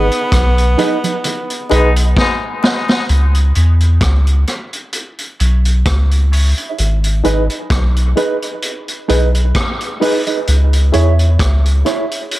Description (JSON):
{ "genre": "dub reggae", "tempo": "65 BPM", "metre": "4/4", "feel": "swing 55% on 16ths", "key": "C# minor", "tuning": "A4 = 442 Hz", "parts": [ { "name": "breathy tenor saxophone", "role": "melody", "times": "0.0-2.2 s", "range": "B3", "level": "-20 LUFS", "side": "right 1 dB", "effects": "dub echo" }, { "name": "mellow electric guitar", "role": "accompaniment", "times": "0.0-12.1 s", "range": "D#4 to E5", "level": "-21 LUFS", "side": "right 7 dB", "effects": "high-pass filter, dub echo" }, { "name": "reed electric piano", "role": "stabs", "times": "0.0-12.1 s", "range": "D#4 to C#5", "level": "-22 LUFS", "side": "left 4 dB", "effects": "fast tremolo, high-pass filter, dub echo" }, { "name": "soft dub sub bass", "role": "bass", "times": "0.0-11.8 s", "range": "G#1 to E2", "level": "-11 LUFS", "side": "equal", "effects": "none" }, { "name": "vintage drum kit", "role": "drums", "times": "0.1-12.4 s", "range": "hi-hat, kick drum, rim click, snare drum", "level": "-19 LUFS", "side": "equal", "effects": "none" }, { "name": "congas", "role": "percussion", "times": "0.8-3.1 s", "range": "none", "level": "-26 LUFS", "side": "right 5 dB", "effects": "high-pass filter on perc, dub echo" }, { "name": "brilliant trombone section", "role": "second line", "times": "1.7-3.0 s", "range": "G#3 to D#4", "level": "-21 LUFS", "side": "left 4 dB", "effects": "high-pass filter, dub echo" } ], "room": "light reverb", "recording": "none", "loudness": "-12 LUFS", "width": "side -16 dB against mid", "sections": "0.0-3.1 A section; 3.1-12.4 B section", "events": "band accent 0.0-3.1; filter sweep 0.0-6.8; drum fill 2.2-3.1", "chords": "0.0 G#m; 3.1 C#m; 6.8 G#m; 10.5 C#m" }